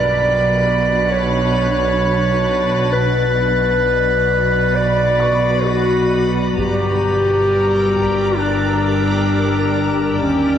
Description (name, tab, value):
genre	cinematic, suspense film score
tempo	66 BPM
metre	4/4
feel	straight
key	B harmonic minor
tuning	A4 = 440 Hz
part	muted studio violin section	melody	0.0-10.6 s	G5 to B5	-28 LUFS	left 5 dB	none
part	warm clarinet	second line	0.0-10.6 s	C#4 to D5	-17 LUFS	left 1 dB	none
part	backwards swelling texture	sustained chords	0.0-10.6 s	D4 to D#5	-24 LUFS	equal	built-in reverb
part	muted studio cello section	bass	0.0-10.6 s	D#2 to B2	-24 LUFS	right 1 dB	none
part	muted studio double bass section	bass	0.0-10.6 s	G1 to D#2	-23 LUFS	right 3 dB	none
part	analog drone	drone	0.0-10.6 s	G1 to D#2	-25 LUFS	equal	chorus
part	muted studio violin section	texture	0.0-10.6 s	Bb5 to A6	-30 LUFS	left 2 dB	none
part	warm baby grand piano	texture	0.0-10.2 s	B4 to D7	-33 LUFS	left 2 dB	none
part	taiko ensemble	drums	6.6-8.4 s	none	-30 LUFS	equal	none
part	reverse cymbal	sound effects	10.5-10.6 s	none	barely audible	none	none
room	wet concert hall reverb, RT60 2.3 s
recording	heavily compressed radio sound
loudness	-14 LUFS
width	side -9 dB against mid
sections	0.0-10.6 A section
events	none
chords	0.0 Bm; 6.6 Gm